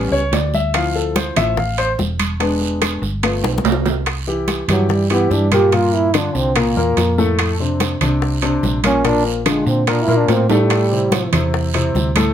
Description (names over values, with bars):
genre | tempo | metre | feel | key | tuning
Afro-Cuban jazz | 144 BPM | 4/4 | straight | unclear | A4 = 441 Hz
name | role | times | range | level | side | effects
warm grand piano | accompaniment | 0.0-12.3 s | A2 to F5 | -19 LUFS | left 3 dB | none
hollow-body short-scale fingered electric bass | bass | 0.0-12.3 s | E1 to Bb2 | -20 LUFS | right 1 dB | none
bongos | percussion | 0.1-12.2 s | none | -26 LUFS | left 7 dB | none
congas | percussion | 0.1-12.3 s | none | -25 LUFS | right 1 dB | none
guiro | percussion | 0.3-12.3 s | none | -32 LUFS | right 8 dB | none
timbales | percussion | 0.3-12.3 s | none | -22 LUFS | right 8 dB | none
claves | percussion | 0.7-12.3 s | none | -29 LUFS | left 7 dB | none
breathy trombone | melody | 4.7-11.5 s | F3 to G4 | -18 LUFS | right 2 dB | none
room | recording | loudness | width
moderate studio ambience, RT60 0.5 s | none | -14 LUFS | side -10 dB against mid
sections
0.0-4.1 A section; 4.1-12.3 A section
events
grand piano solo 0.0-4.1; drum fill 3.4-4.1, 10.5; trombone solo 4.1-12.3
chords
0.0 A7 (rootless); 0.7 Dm9; 2.4 E7; 3.2 G7; 4.1 C; 5.7 Gm7; 6.6 C7; 7.4 F6; 9.1 Bb; 10.7 Am7